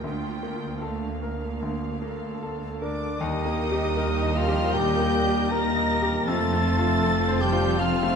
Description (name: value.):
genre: cinematic.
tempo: 78 BPM.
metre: 4/4.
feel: rubato.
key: Eb lydian.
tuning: A4 = 440 Hz.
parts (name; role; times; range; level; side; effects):
rich studio violin section; melody; 0.0-8.2 s; F5 to Bb6; -32 LUFS; left 2 dB; none.
bright grand piano; accompaniment; 0.0-8.2 s; D2 to Eb5; -29 LUFS; left 3 dB; none.
rich studio viola section; accompaniment; 0.0-8.2 s; G3 to A4; -33 LUFS; right 3 dB; none.
rich studio cello section; bass; 0.0-8.2 s; D2 to F2; -32 LUFS; right 4 dB; none.
hollow concert flute; second line; 2.8-8.2 s; D5 to Bb5; -31 LUFS; left 3 dB; none.
warm cor anglais; second line; 2.8-8.2 s; D4 to Bb4; -32 LUFS; right 3 dB; none.
mellow French horn section; sustained chords; 2.8-8.2 s; D3 to Bb3; -30 LUFS; left 5 dB; none.
rich studio violin section; second line; 3.2-8.2 s; A4 to Eb5; -33 LUFS; left 2 dB; none.
warm studio double bass section; bass; 3.2-8.2 s; F1 to Eb2; -28 LUFS; right 4 dB; none.
room: moderate scoring stage reverb, RT60 2.0 s.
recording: none.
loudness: -22 LUFS.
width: side -6 dB against mid.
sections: 0.0-3.2 A section; 3.2-8.2 B section.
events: none.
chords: 0.0 Bbmaj7/D; 3.2 Eb; 6.3 F.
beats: | 0.03 0.82 1.62 2.42 | 3.21 3.98 4.75 5.51 | 6.28 7.04 7.79.